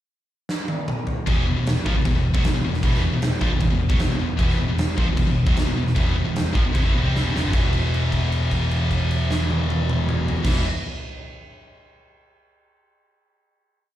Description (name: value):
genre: hard rock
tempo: 153 BPM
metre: 4/4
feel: straight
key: unclear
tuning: A4 = 440 Hz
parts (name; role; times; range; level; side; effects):
- huge arena drum kit; drums; 0.5-10.5 s; crash cymbal, kick drum, snare drum, toms; -24 LUFS; equal; none
- distorted electric guitar; riff; 1.3-10.6 s; E2 to C4; -28 LUFS; right 7 dB; overdrive
- scooped high-gain guitar; riff; 1.3-10.6 s; E2 to C4; -26 LUFS; left 6 dB; distortion
- picked electric bass; bass; 1.3-10.6 s; E1 to C2; -23 LUFS; equal; none
room: little or no reverb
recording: live gig heard through the venue's PA, recital hall reverb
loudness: -19 LUFS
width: side -13 dB against mid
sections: 0.0-1.3 pickup bar; 1.3-7.5 riff; 7.5-10.7 final chord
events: drum fill 0.5-1.3, 7.1-7.5; held note 7.5-10.4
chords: 0.0 N.C.; 1.3 E5